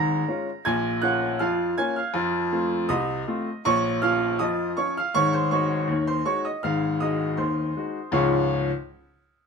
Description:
ragtime piano; 80 BPM; 2/4; straight; Db major; A4 = 440 Hz
bright baby grand piano; solo; 0.0-8.7 s; Ab1 to Bb6; -22 LUFS; equal
moderate studio reverb, RT60 0.8 s; minimal, uncompressed stereo recording; -22 LUFS; side -5 dB against mid
0.0-8.1 A section; 8.1-9.5 B section
0.0 Db; 0.6 Bbm; 2.1 F7; 3.6 Bbm; 5.1 Ab7sus4; 6.6 Ab7; 8.1 Db
| 0.64 1.39 | 2.14 2.89 | 3.64 4.39 | 5.14 5.89 | 6.64 7.39 | 8.15

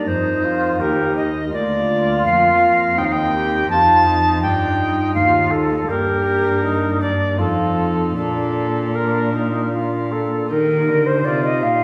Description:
classical, baroque-style sonata movement with continuo; 76-84 BPM; 3/4; rubato; Bb major; A4 = 437 Hz
tenor recorder; melody; 0.0-11.8 s; F4 to A5; -21 LUFS; equal
silver concert flute; second line; 0.0-11.8 s; D4 to F5; -24 LUFS; equal
pipe organ, sparkling flutes; accompaniment; 0.0-11.8 s; D2 to Bb4; -26 LUFS; equal
rich cello; bass; 0.0-11.8 s; D2 to Eb3; -26 LUFS; equal
wet recital hall reverb, RT60 1.6 s; heard from further back in the room; -18 LUFS; mono
0.0-10.5 A section; 10.5-11.8 A section
0.0 Eb; 1.5 Bb/D; 3.0 Cm7/Eb; 3.7 F7; 5.9 Gm; 7.4 F7; 8.2 Bb; 10.5 Eb
0.08 0.80 | 1.54 2.26 2.98 | 3.70 4.43 5.15 | 5.89 6.63 7.39 | 8.17 8.95 9.73 | 10.50 11.26

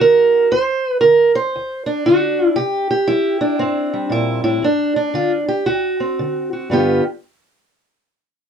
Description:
acoustic country blues, solo or duo; 116 BPM; 4/4; swing 64% on 8ths; A4 = 440 Hz
fingerpicked steel-string acoustic guitar; solo; 0.0-7.0 s; D2 to C5; -14 LUFS; right 2 dB
light reverb; dry, close 1970s-style studio recording; -15 LUFS; side -7 dB against mid
0.0-6.7 A section; 6.7-8.5 B section
0.0 D7; 2.6 C7; 4.6 G5; 5.7 D7; 6.7 G7
| 0.50 1.02 1.54 2.05 | 2.57 3.09 3.60 4.12 | 4.64 5.16 5.67 6.19 | 6.71

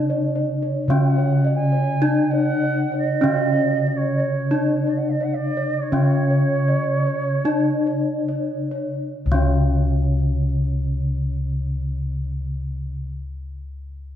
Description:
Javanese gamelan; 34-58 BPM; 4/4; straight; A4 = 441 Hz
gamelan-type bronze metallophone; melody; 0.0-13.1 s; C#4 to D4+50c; -24 LUFS; left 3 dB
gamelan-type bronze metallophone; accompaniment; 0.0-13.1 s; C#3; -25 LUFS; right 1 dB
gamelan-type bossed gongs; arpeggios; 0.0-13.1 s; C#5 to D5+50c; -32 LUFS; equal
gamelan-type bronze metallophone; arpeggios; 0.0-13.1 s; C#5 to D5+50c; -31 LUFS; right 3 dB
gamelan-type bossed gongs; bass; 0.0-13.0 s; C#2 to D4+50c; -23 LUFS; left 1 dB
mellow bansuri; second line; 1.0-8.6 s; C#5 to G#5-33c; -26 LUFS; right 6 dB
moderate recital hall reverb, RT60 1.5 s; dark, warm production; -19 LUFS; side -10 dB against mid
0.0-9.1 A section; 9.1-14.2 B section
slowing down 0.0-9.1
0.89 2.02 | 3.23 4.52 5.92 7.45 | 9.13 10.89 12.65

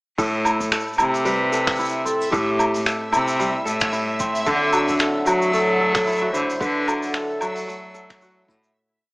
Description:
folktronica; 112 BPM; 4/4; swing 56% on 16ths; A dorian; A4 = 440 Hz
kora; arpeggios; 0.2-9.1 s; A2 to A4; -25 LUFS; equal; low-pass filter, digital delay
bright cello; bass; 0.2-8.7 s; A2 to F#3; -23 LUFS; equal
electronic kick drum; drums; 0.2-8.6 s; -34 LUFS; equal; overdrive
soft brush drum kit; drums; 0.2-8.7 s; finger snaps, hi-hat, shaker, woodblock; -24 LUFS; equal
backwards swelling texture; texture; 1.1-8.8 s; E5; -31 LUFS; equal; built-in reverb
mellow clarinet; melody; 1.0-8.5 s; F#4 to C5; -24 LUFS; equal
pedal harmonium; sustained chords; 4.5-8.7 s; D3 to E4; -30 LUFS; equal
light reverb, small room reverb; small speaker sound; -18 LUFS; side -27 dB against mid
0.2-8.8 groove
fade-out 5.9-8.8
0.2 Am7; 4.5 Dadd9
| 0.18 0.71 1.25 1.79 | 2.32 2.86 3.39 3.93 | 4.46 5.00 5.54 6.07 | 6.61 7.14 7.68 8.21

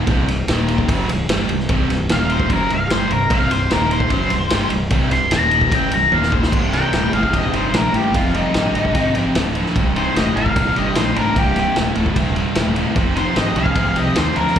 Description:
blues rock power trio and southern rock; 149 BPM; 4/4; straight; C minor; A4 = 439 Hz
overdriven electric guitar; riff; 0.0-14.6 s; C2 to G3; -20 LUFS; equal; slapback echo
fuzz fingered electric bass; bass; 0.0-14.6 s; C1 to Eb2; -23 LUFS; equal; overdrive
vintage drum kit; drums; 0.1-14.6 s; crash cymbal, kick drum, ride cymbal, snare drum, toms; -21 LUFS; equal
octave-fuzz lead guitar; melody; 2.1-14.6 s; Eb4 to C6; -20 LUFS; left 2 dB; distortion, slapback echo
lightly driven lead guitar; second line; 6.7-14.5 s; G3 to Bb4; -27 LUFS; right 3 dB; slapback echo
little or no reverb; live gig heard through the venue's PA, club reverb; -15 LUFS; side -9 dB against mid
0.0-6.5 A section; 6.5-14.6 B section
lead electric guitar solo 0.0-6.5; drum fill 6.1-6.5
0.1 C5; 0.5 Eb5; 0.9 C5; 2.1 Eb5; 2.5 C5; 3.7 Eb5; 4.1 C5; 5.3 Eb5; 5.7 C5; 6.1 Eb5; 6.5 Cm7; 8.1 Fm9; 9.8 Cm7; 13.0 Fm7
| 0.08 0.48 0.89 1.29 | 1.69 2.09 2.50 2.90 | 3.30 3.70 4.11 4.51 | 4.91 5.32 5.72 6.12 | 6.53 6.93 7.34 7.74 | 8.15 8.55 8.96 9.36 | 9.76 10.16 10.57 10.97 | 11.37 11.77 12.17 12.57 | 12.97 13.37 13.77 14.17 | 14.57

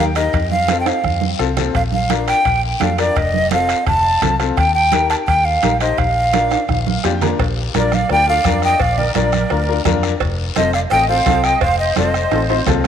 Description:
latin, cumbia; 170 BPM; 4/4; straight; Bb major; A4 = 442 Hz
breathy jazz flute; melody; 0.0-12.6 s; D5 to A5; -17 LUFS; equal
bright upright piano; accompaniment; 0.0-12.9 s; C4 to G5; -23 LUFS; left 11 dB
vintage muted fingered electric bass; bass; 0.0-12.9 s; F1 to F2; -21 LUFS; equal
bombo; percussion; 0.2-12.9 s; -25 LUFS; equal
guiro; percussion; 0.2-12.9 s; -29 LUFS; left 13 dB
timbales and cowbell; percussion; 0.2-12.9 s; -27 LUFS; right 12 dB
congas; percussion; 0.3-12.8 s; -24 LUFS; right 11 dB
musette accordion; second line; 7.8-12.6 s; Bb4 to Eb5; -26 LUFS; right 8 dB; tape echo
moderate plate reverb, RT60 3.2 s; 1960s-style stereo with parts hard left and right; -14 LUFS; side -8 dB against mid
0.0-7.4 A section; 7.4-12.9 B section
drum fill 0.9-1.7, 6.5-7.4, 12.3-12.9; upright piano fill 6.7-7.4
0.3 F; 1.7 Bb; 3.2 F7; 4.6 Eb; 6.0 Bb; 10.2 F7
| 0.34 0.69 1.04 1.40 | 1.75 2.10 2.46 2.81 | 3.16 3.51 3.87 4.22 | 4.57 4.92 5.28 5.63 | 5.98 6.33 6.69 7.04 | 7.39 7.74 8.10 8.45 | 8.80 9.15 9.50 9.86 | 10.21 10.56 10.91 11.26 | 11.62 11.97 12.32 12.67

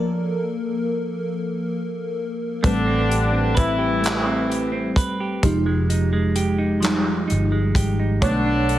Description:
slow six-eight R&B; 43 BPM (dotted quarters); 6/8; straight; A4 = 440 Hz
FM electric piano with soft pad layer; accompaniment; 0.0-8.8 s; D3 to C#5; -24 LUFS; left 1 dB; chorus, tremolo
semi-hollow electric guitar; second line; 2.6-8.8 s; F3 to B4; -25 LUFS; right 3 dB
mellow horn section; stabs; 2.6-8.8 s; D3 to E4; -23 LUFS; left 2 dB
vintage muted fingered electric bass; bass; 2.6-8.8 s; F1 to B1; -23 LUFS; equal
warm soul drum kit; drums; 2.6-8.8 s; handclaps, hi-hat, kick drum; -22 LUFS; equal
light reverb, small room ambience; heavily compressed radio sound; -19 LUFS; side -13 dB against mid
0.0-8.8 A section
FM electric piano solo 0.0-8.8
0.0 Fadd11; 2.6 Am9; 5.4 Fm9; 8.2 Bm9
1.25 | 2.64 4.04 | 5.43 6.83 | 8.22

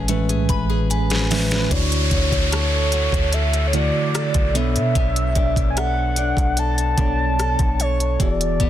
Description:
contemporary R&B; 74 BPM; 4/4; straight; A4 = 440 Hz
mellow tine electric piano; accompaniment; 0.0-8.7 s; A2 to G#5; -24 LUFS; right 2 dB; medium stereo tremolo
picked steel-string acoustic guitar; arpeggios; 0.0-8.7 s; E3 to C#5; -29 LUFS; left 8 dB; tape echo
soft 808-style bass; bass; 0.0-8.7 s; E1 to B2; -22 LUFS; equal
soft synth bell; texture; 0.0-8.2 s; E5 to B5; -36 LUFS; left 1 dB; chorus, phaser, tape echo
smooth R&B drum kit; drums; 0.1-8.7 s; hi-hat, kick drum, rim click, snare drum; -22 LUFS; equal
mellow horn-like synth lead; melody; 1.3-8.7 s; B4 to A5; -24 LUFS; equal; chorus, tape echo
downlifter; sound effects; 1.7-8.2 s; -27 LUFS; equal
digital ambience; dense, heavily limited modern master; -17 LUFS; side -12 dB against mid
0.0-1.7 A section; 1.7-8.7 B section
tine electric piano fill 0.5-1.7; drum fill 0.9-1.7
0.0 Amaj9; 1.7 Dmaj7; 4.5 Bm9
0.09 0.90 | 1.71 2.52 3.33 4.14 | 4.96 5.77 6.58 7.39 | 8.20

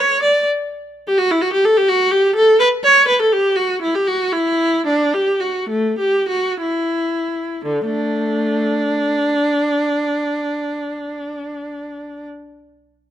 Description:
classical, baroque-style suite movement for unaccompanied viola; 54-86 BPM (dotted quarters); 12/8; rubato; D major; A4 = 440 Hz
rich viola; solo; 0.0-12.3 s; D3 to D5; -15 LUFS; equal
light reverb; close, detailed microphones; -15 LUFS; side -10 dB against mid
0.0-7.6 A section; 7.6-11.5 B section
slowing down 2.1-7.6
0.47 | 1.18 1.89 2.59 3.31 | 4.06 4.86 5.69 6.60 | 7.63 8.62 9.59 10.54

